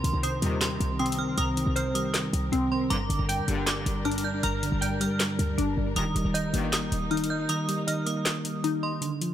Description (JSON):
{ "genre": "hip hop, trap", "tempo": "157 BPM", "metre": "4/4", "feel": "half-time", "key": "unclear", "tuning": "A4 = 439 Hz", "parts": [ { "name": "metallic FM bell", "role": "second line", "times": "0.0-9.0 s", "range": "C6 to G6", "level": "-34 LUFS", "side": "right 5 dB", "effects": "chorus, tape echo" }, { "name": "soft electric-piano-like synth keys", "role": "accompaniment", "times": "0.0-9.3 s", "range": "G2 to Eb5", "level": "-30 LUFS", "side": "right 1 dB", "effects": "chorus, low-pass filter" }, { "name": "dark symphonic string section", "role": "sustained chords", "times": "0.0-9.0 s", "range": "Eb3 to Bb4", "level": "-37 LUFS", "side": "left 1 dB", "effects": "none" }, { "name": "glassy wavetable pluck", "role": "arpeggios", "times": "0.0-9.0 s", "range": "C4 to Bb5", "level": "-32 LUFS", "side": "left 3 dB", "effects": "chorus, low-pass filter, tape echo" }, { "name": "short 808-style bass", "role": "bass", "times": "0.0-7.5 s", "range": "Eb1 to G2", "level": "-30 LUFS", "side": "equal", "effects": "none" }, { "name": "trap drum kit", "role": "drums", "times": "0.0-9.3 s", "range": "handclaps, hi-hat, snare drum", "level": "-31 LUFS", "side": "left 1 dB", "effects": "none" }, { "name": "warm brass ensemble", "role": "stabs", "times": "0.4-6.8 s", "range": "G2 to Eb3", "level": "-39 LUFS", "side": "left 4 dB", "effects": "tape echo" } ], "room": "light reverb, digital ambience", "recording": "none", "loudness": "-25 LUFS", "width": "side -11 dB against mid", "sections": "0.0-9.0 A section", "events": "kick muted 7.5-9.0; break 9.0-9.3", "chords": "0.0 Cm7; 2.9 Gm; 6.0 Eb", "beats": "0.23 0.61 0.99 | 1.38 1.76 2.14 2.52 | 2.90 3.29 3.67 4.05 | 4.43 4.82 5.20 5.58 | 5.96 6.34 6.73 7.11 | 7.49 7.87 8.26 8.64 | 9.02" }